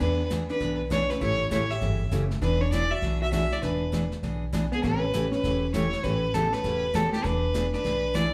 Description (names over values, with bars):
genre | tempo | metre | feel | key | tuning
country, western swing | 199 BPM | 4/4 | swing 63% on 8ths | unclear | A4 = 440 Hz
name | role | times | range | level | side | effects
rich fiddle | melody | 0.0-8.3 s | G4 to E5 | -31 LUFS | equal | none
vintage hollow-body jazz guitar | second line | 0.0-8.3 s | A3 to G4 | -36 LUFS | equal | none
picked steel-string acoustic guitar | accompaniment | 0.0-8.3 s | C#3 to G#4 | -33 LUFS | equal | none
upright bass | bass | 0.0-8.3 s | E1 to E2 | -32 LUFS | equal | none
vintage brush drum kit | drums | 0.0-8.3 s | brushed snare drum, hi-hat, kick drum, snare drum | -37 LUFS | equal | none
room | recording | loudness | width
moderate large studio reverb, RT60 0.9 s | band playing live in one room | -26 LUFS | mono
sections
0.0-8.3 A section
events
none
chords
0.0 E7; 1.2 A7; 2.4 E9; 4.8 A9; 7.2 E7